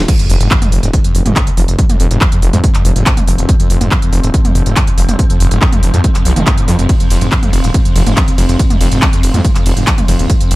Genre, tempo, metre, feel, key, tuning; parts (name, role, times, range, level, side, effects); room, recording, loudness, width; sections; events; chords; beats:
driving peak-time techno; 141 BPM; 4/4; straight; F minor; A4 = 440 Hz
detuned saw bass; bass; 0.0-10.6 s; Eb1 to F2; -13 LUFS; equal; sidechain pumping
swell and impact; sound effects; 0.0-1.8 s; -25 LUFS; equal
screaming distorted acid line; riff; 0.1-10.6 s; F1 to F3; -18 LUFS; equal; distortion, ensemble chorus, sidechain pumping, digital delay
swarming drone; drone; 1.7-10.6 s; F3 to C4; -22 LUFS; equal; built-in reverb, sidechain pumping
electronic kick drum; drums; 0.1-10.4 s; -12 LUFS; equal
techno drum kit; drums; 0.1-10.6 s; crash cymbal, handclaps, hi-hat, ride cymbal, toms; -18 LUFS; right 1 dB; sidechain pumping on hats, sidechain pumping on toms, sidechain pumping on cymbals
little or no reverb; -9 LUFS; side -19 dB against mid
0.1-10.6 A section
drop 0.1-10.6; impact 0.1-1.8
0.1 F5
| 0.08 0.51 0.94 1.36 | 1.79 2.21 2.64 3.06 | 3.49 3.91 4.34 4.76 | 5.19 5.62 6.04 6.47 | 6.89 7.32 7.74 8.17 | 8.59 9.02 9.45 9.87 | 10.30